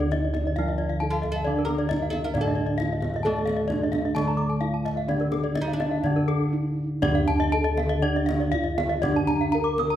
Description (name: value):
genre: Balinese gamelan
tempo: 120-134 BPM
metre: 4/4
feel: straight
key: D pelog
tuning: A4 = 440 Hz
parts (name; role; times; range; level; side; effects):
- gamelan-type bronze metallophone; melody; 0.0-10.0 s; D4 to Bb4-20c; -28 LUFS; right 2 dB; none
- oud; second line; 0.0-6.9 s; D4 to Bb4-20c; -34 LUFS; equal; none
- gamelan-type bronze metallophone; accompaniment; 0.0-10.0 s; D3 to A3-30c; -31 LUFS; equal; none
- gamelan-type bronze metallophone; arpeggios; 0.0-10.0 s; A4-30c to D6; -30 LUFS; left 5 dB; none
- gamelan-type bossed gongs; bass; 0.0-10.0 s; D2 to A4-30c; -28 LUFS; equal; none
- kendang; percussion; 0.1-10.0 s; none; -34 LUFS; equal; none
- gamelan-type bronze metallophone; arpeggios; 0.2-9.9 s; Bb4-20c to Eb6+20c; -33 LUFS; right 5 dB; none
room: moderate recital hall reverb, RT60 1.3 s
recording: none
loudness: -22 LUFS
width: side -11 dB against mid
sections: 0.0-7.0 A section; 7.0-10.0 B section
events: none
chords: none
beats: 0.12 0.57 1.02 | 1.46 1.91 2.36 2.80 | 3.25 3.70 4.16 4.62 | 5.08 5.56 6.04 6.53 | 7.03 7.53 8.03 8.53 | 9.03 9.53